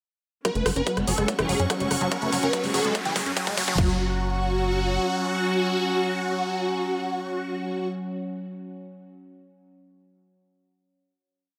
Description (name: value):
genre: psychedelic trance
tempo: 144 BPM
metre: 4/4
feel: straight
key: unclear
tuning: A4 = 440 Hz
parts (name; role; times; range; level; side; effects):
- swarming rave lead; melody; 0.4-7.9 s; F#4 to B4; -30 LUFS; equal; chorus, phaser, sidechain pumping, tape echo
- overtone-sweeping drone; sustained chords; 1.3-7.9 s; F#3 to C#4; -34 LUFS; equal; chorus, built-in reverb, sidechain pumping
- overdriven acid bass; riff; 0.5-4.0 s; E3 to C#4; -31 LUFS; equal; sidechain pumping, tape echo
- drum and bass drum kit; drums; 0.5-3.9 s; crash cymbal, hi-hat, rim click; -32 LUFS; equal; overdrive, high-pass filter on snare, studio reverb, high-pass filter on hats, high-pass filter on cymbals
- electronic kick drum; drums; 0.5-3.9 s; none; -29 LUFS; equal; high-pass filter on kick, studio reverb
- riser; sound effects; 1.6-3.8 s; none; -36 LUFS; equal; none
- clear studio string section; texture; 0.5-7.9 s; C#4 to C#6; -34 LUFS; equal; sidechain pumping
- tight sequencer bass; bass; 0.6-5.0 s; F#1 to F#2; -32 LUFS; equal; none
- formant-sweep wobble bass; second line; 1.0-2.8 s; F#3 to B3; -40 LUFS; equal; none
room: light reverb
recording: high-pass filter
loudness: -25 LUFS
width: mono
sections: 0.5-3.8 build; 3.8-7.1 final chord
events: build-up 0.5-3.8; filter sweep on acid bass 0.5-3.8; filter sweep 0.5-3.8; riser 1.6-3.8; drum fill 2.1-3.8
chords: 0.5 F#5